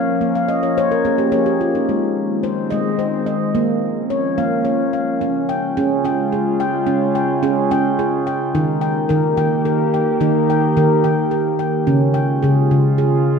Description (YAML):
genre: world meditative, meditative tuned percussion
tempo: 72 BPM (dotted quarters)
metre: 6/8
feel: straight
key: unclear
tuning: A4 = 438 Hz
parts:
  - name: warbly tape-like pad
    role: sustained chords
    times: 0.0-13.4 s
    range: Db3 to G4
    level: -21 LUFS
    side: equal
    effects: chorus, built-in reverb
  - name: handpan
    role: arpeggios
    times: 0.0-13.4 s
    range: Db3 to G5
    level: -17 LUFS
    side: equal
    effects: none
room: wet concert hall reverb, RT60 2.0 s, small room reverb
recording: none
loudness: -15 LUFS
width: side -6 dB against mid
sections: 0.0-5.2 A section; 5.2-13.4 B section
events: handpan fill 0.3-1.9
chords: 0.0 Bbm; 1.9 Ab; 3.5 Bbm; 5.2 Db; 8.5 Eb; 11.9 Db